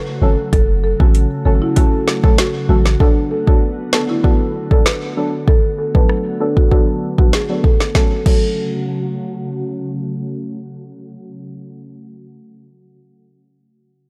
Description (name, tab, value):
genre	dancehall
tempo	97 BPM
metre	4/4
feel	straight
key	F# minor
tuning	A4 = 440 Hz
part	buzzing marimba with medium mallets	melody	0.0-9.8 s	E4 to B4	-24 LUFS	equal	low-pass filter, digital delay
part	glassy FM pad	sustained chords	0.0-11.2 s	C#3 to F#4	-28 LUFS	equal	ensemble chorus, built-in reverb, sidechain pumping, low-pass filter
part	deep mellow chord stab	accompaniment	0.2-11.8 s	F#3 to A4	-24 LUFS	equal	chorus, low-pass filter
part	warm 808-style bass	bass	0.2-3.0 s	F#1 to A1	-17 LUFS	equal	none
part	afro-pop drum kit	drums	0.5-8.4 s	crash cymbal, hi-hat, kick drum, rim click, snare drum	-16 LUFS	equal	none
room	little or no reverb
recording	dark, warm production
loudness	-16 LUFS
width	mono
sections	0.0-8.0 A section; 8.0-10.4 B section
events	filter sweep 0.0-8.0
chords	0.0 F#m; 3.0 Bm7; 8.0 F#m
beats	| 0.53 1.15 1.76 2.38 | 3.00 3.62 4.24 4.86 | 5.48 6.09 6.71 7.33 | 7.95 8.57 9.19 9.81